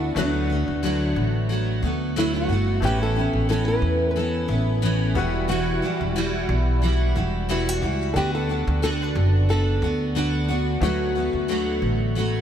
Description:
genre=acoustic pop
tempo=90 BPM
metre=4/4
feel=swing 55% on 16ths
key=D major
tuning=A4 = 439 Hz
part: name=nylon-string guitar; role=melody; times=0.0-12.1 s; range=D4 to B4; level=-28 LUFS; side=left 1 dB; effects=ping-pong delay
part: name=bright concert grand piano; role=accompaniment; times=0.0-12.4 s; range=G3 to B4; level=-35 LUFS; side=left 7 dB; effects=none
part: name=picked steel-string acoustic guitar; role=accompaniment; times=0.0-12.4 s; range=E2 to F#4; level=-25 LUFS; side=equal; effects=double-tracked left and right
part: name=upright bass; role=bass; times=0.0-12.4 s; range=E1 to E2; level=-24 LUFS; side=equal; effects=none
room=light reverb, small room ambience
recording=none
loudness=-20 LUFS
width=side -9 dB against mid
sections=0.0-2.8 A section; 2.8-12.4 A section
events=none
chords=0.2 D6; 2.8 Aadd9; 5.2 Emadd9; 8.2 Bm; 10.8 D6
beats=| 0.16 0.83 1.50 2.16 | 2.83 3.50 4.16 4.83 | 5.49 6.16 6.83 7.49 | 8.16 8.82 9.49 10.16 | 10.83 11.49 12.16

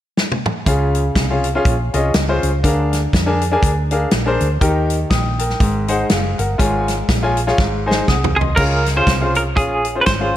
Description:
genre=uptempo gospel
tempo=121 BPM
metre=4/4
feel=swing 57% on 8ths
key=Db major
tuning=A4 = 440 Hz
part: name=natural country drum kit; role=drums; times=0.2-10.2 s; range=crash cymbal, hi-hat, kick drum, snare drum, toms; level=-19 LUFS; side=equal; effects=none
part: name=clear baby grand piano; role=accompaniment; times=0.7-10.4 s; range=Ab2 to Eb6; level=-19 LUFS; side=left 1 dB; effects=none
part: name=hollow-body short-scale fingered electric bass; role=bass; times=0.7-10.3 s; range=Gb1 to F2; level=-20 LUFS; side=equal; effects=none
part: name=semi-hollow electric guitar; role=melody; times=8.4-10.4 s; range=Ab4 to C5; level=-18 LUFS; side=right 2 dB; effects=tremolo
room=light reverb, small room ambience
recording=none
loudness=-14 LUFS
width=side -12 dB against mid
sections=0.7-8.6 A section; 8.6-10.4 B section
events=drum fill 0.2-0.7, 7.6-8.6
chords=0.0 N.C.; 0.7 Db; 2.6 Bb7/D; 4.6 Eb; 5.6 Ab7; 6.6 Db/Ab; 7.6 Ab; 8.6 Db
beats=0.17 | 0.66 1.15 1.65 2.14 | 2.64 3.13 3.62 4.12 | 4.61 5.11 5.60 6.10 | 6.59 7.09 7.58 8.08 | 8.58 9.07 9.57 10.06

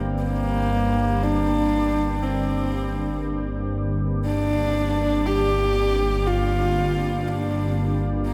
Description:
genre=ambient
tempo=free time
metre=none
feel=none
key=unclear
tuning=A4 = 445 Hz
part: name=sweeping resonant pad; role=sustained chords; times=0.0-8.3 s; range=Bb3 to G4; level=-36 LUFS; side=equal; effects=chorus
part: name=organ-like drone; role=drone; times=0.0-8.3 s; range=G1 to G2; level=-26 LUFS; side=equal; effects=ensemble chorus, built-in reverb
part: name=bronze singing bowl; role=texture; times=0.0-8.3 s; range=C4 to C5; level=-43 LUFS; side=equal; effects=none
part: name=warm horsehead fiddle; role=melody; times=0.2-8.3 s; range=Bb3 to G4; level=-26 LUFS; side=equal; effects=tape echo
room=wet cathedral reverb, RT60 5.5 s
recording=none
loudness=-23 LUFS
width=mono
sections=0.0-8.3 A section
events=fade-in on analog synth pad 0.0-8.3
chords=0.0 Gm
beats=free time

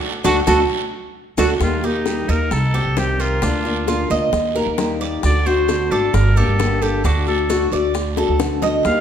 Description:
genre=latin, Cuban son and guajira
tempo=132 BPM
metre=4/4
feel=straight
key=unclear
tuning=A4 = 440 Hz
part: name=fingerpicked steel-string acoustic guitar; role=accompaniment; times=0.2-9.0 s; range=C3 to G4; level=-22 LUFS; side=left 5 dB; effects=none
part: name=Cuban tres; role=arpeggios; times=0.2-9.0 s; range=D4 to Eb5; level=-22 LUFS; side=right 4 dB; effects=none
part: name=upright bass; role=bass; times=0.2-9.0 s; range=G1 to Eb2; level=-20 LUFS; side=right 1 dB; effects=none
part: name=bongos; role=percussion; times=0.2-9.0 s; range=none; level=-27 LUFS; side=left 6 dB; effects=none
part: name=guiro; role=percussion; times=0.2-9.0 s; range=none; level=-34 LUFS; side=right 8 dB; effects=none
part: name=maracas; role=percussion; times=0.2-9.0 s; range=none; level=-36 LUFS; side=left 2 dB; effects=none
part: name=trumpet with straight mute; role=melody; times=0.3-9.0 s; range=Eb4 to F5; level=-24 LUFS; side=right 1 dB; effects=none
room=moderate recital hall reverb, RT60 1.4 s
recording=none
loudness=-16 LUFS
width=side -8 dB against mid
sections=0.0-1.6 A section; 1.6-9.0 B section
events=band accent 0.0-1.6; drum fill 8.2-8.9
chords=0.0 D; 1.6 Eb; 2.5 Cm; 3.4 Bb/D; 4.3 Eb; 5.2 D; 6.1 Gm; 7.0 D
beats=0.25 0.70 1.16 | 1.61 2.06 2.52 2.97 | 3.42 3.88 4.33 4.78 | 5.24 5.69 6.14 6.59 | 7.05 7.50 7.95 8.40 | 8.85

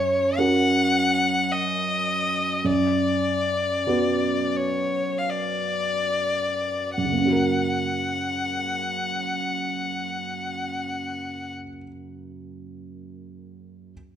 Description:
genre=classical, romantic duo for violin and grand piano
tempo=33-54 BPM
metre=3/4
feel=rubato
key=F# major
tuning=A4 = 440 Hz
part: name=clear violin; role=melody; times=0.0-11.5 s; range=C#5 to F#5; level=-24 LUFS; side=left 3 dB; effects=none
part: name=dark baby grand piano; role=accompaniment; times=0.0-13.9 s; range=F#2 to B4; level=-26 LUFS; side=right 2 dB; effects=none
room=wet recital hall reverb, RT60 1.5 s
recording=none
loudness=-22 LUFS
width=side -10 dB against mid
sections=0.0-7.0 A section; 7.0-11.7 B section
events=slowing down 0.0-7.0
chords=0.0 F#; 2.7 Bm/F#; 7.0 F#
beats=0.40 1.52 | 2.65 3.87 5.29 | 6.98 8.56 10.12

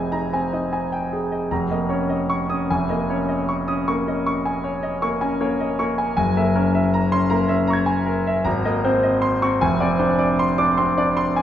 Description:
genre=classical, impressionist solo piano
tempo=52 BPM (dotted quarters)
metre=9/8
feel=rubato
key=F minor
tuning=A4 = 440 Hz
part: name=clear concert grand piano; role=solo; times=0.0-11.4 s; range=F1 to Ab6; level=-18 LUFS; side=equal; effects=none
room=wet recital hall reverb, RT60 1.6 s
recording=recorded in a church or concert hall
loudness=-18 LUFS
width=side -10 dB against mid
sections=0.0-11.4 A section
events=none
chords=0.0 Fm9; 1.5 Db69/F; 2.7 Eb9sus4/F; 6.2 Gb9; 8.5 Abadd9; 9.6 Fm6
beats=0.32 1.50 | 2.68 3.86 5.01 | 6.17 7.30 8.46 | 9.60 10.77

